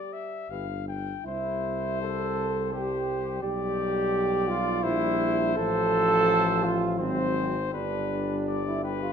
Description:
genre	classical, brass quintet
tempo	84 BPM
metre	3/4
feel	uneven beats, rubato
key	C major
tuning	A4 = 440 Hz
part	warm trumpet	melody	0.0-9.1 s	B4 to G5	-33 LUFS	left 10 dB	none
part	warm trombone	accompaniment	0.0-9.1 s	G3 to A4	-28 LUFS	right 2 dB	none
part	mellow flugelhorn	second line	0.5-9.1 s	C4 to B4	-33 LUFS	right 7 dB	none
part	dark French horn	accompaniment	0.5-9.1 s	F3 to G4	-34 LUFS	left 6 dB	none
part	warm bass trombone	bass	0.5-9.1 s	G1 to C2	-32 LUFS	equal	none
room	moderate recital hall reverb, RT60 1.4 s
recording	minimal, uncompressed stereo recording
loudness	-24 LUFS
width	side -7 dB against mid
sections	0.0-1.3 A section; 1.3-9.1 B section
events	none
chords	0.0 G5; 1.3 C; 3.4 G/B; 4.8 C7/Bb; 5.6 F/A; 7.0 Ab7; 7.7 G

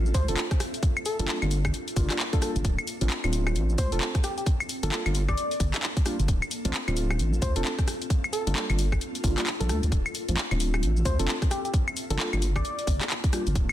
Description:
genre	UK garage, two-step garage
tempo	132 BPM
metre	4/4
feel	swing 61% on 16ths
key	unclear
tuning	A4 = 441 Hz
part	ethereal airy pad	sustained chords	0.0-13.7 s	Bb3 to E5	-39 LUFS	equal	ensemble chorus, built-in reverb, phaser, sidechain pumping
part	deep mellow chord stab	stabs	0.0-13.4 s	G3 to F4	-33 LUFS	equal	chorus, digital delay
part	deep soft wobble bass	bass	0.0-13.7 s	D1 to D2	-26 LUFS	equal	chorus
part	soft struck synth lead	melody	0.1-12.9 s	G4 to D5	-34 LUFS	equal	chorus, digital delay
part	electronic kick drum	drums	0.1-13.7 s	none	-27 LUFS	equal	none
part	house drum kit	drums	0.1-13.7 s	cabasa, claves, handclaps, hi-hat, rim click	-31 LUFS	left 1 dB	overdrive
room	light reverb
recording	dense, heavily limited modern master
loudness	-24 LUFS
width	side -13 dB against mid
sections	0.0-13.7 A section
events	kick drops out 9.5-9.9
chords	0.0 Dm7; 0.8 Gm7; 2.6 Dm7; 4.5 Gm7; 6.3 Dm7; 8.1 Gm7; 9.9 Dm7; 11.7 Gm7

